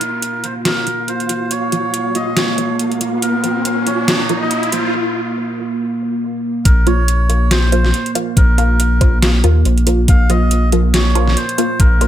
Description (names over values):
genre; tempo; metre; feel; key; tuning
deep dubstep; 140 BPM; 4/4; swing 57% on 16ths, half-time; Bb minor; A4 = 445 Hz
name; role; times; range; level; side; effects
melodica; melody; 0.0-12.1 s; Bb4 to F5; -22 LUFS; right 1 dB; low-pass filter, dub echo
dark analog pad; sustained chords; 0.0-12.1 s; Bb3; -22 LUFS; right 2 dB; chorus
filtered dub chord stab; stabs; 0.0-12.1 s; F3 to F4; -22 LUFS; equal; phaser, analog chorus, dub echo
dubstep drum kit; drums; 0.0-12.1 s; hi-hat, snare drum; -18 LUFS; equal; none
riser; sound effects; 0.0-4.9 s; none; -24 LUFS; left 1 dB; none
flickering grainy texture; texture; 0.3-4.9 s; F4; -26 LUFS; right 2 dB; built-in reverb
soft dub sub bass; bass; 6.7-12.1 s; Bb1 to Eb2; -13 LUFS; equal; tube saturation
electronic kick drum; drums; 6.7-11.9 s; none; -12 LUFS; equal; none
room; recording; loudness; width
light reverb, digital ambience; none; -13 LUFS; side -11 dB against mid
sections
0.0-6.7 A section; 6.7-12.1 B section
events
build-up 0.0-6.7; riser 0.0-4.9; filter sweep on synth stab 0.0-6.7; break 4.9-6.7; drop 6.7-12.1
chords
0.0 Bb5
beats
0.23 0.65 1.08 | 1.51 1.94 2.37 2.80 | 3.23 3.65 4.08 4.51 | 4.94 5.37 5.80 6.22 | 6.65 7.08 7.51 7.94 | 8.37 8.80 9.22 9.65 | 10.08 10.51 10.94 11.37 | 11.80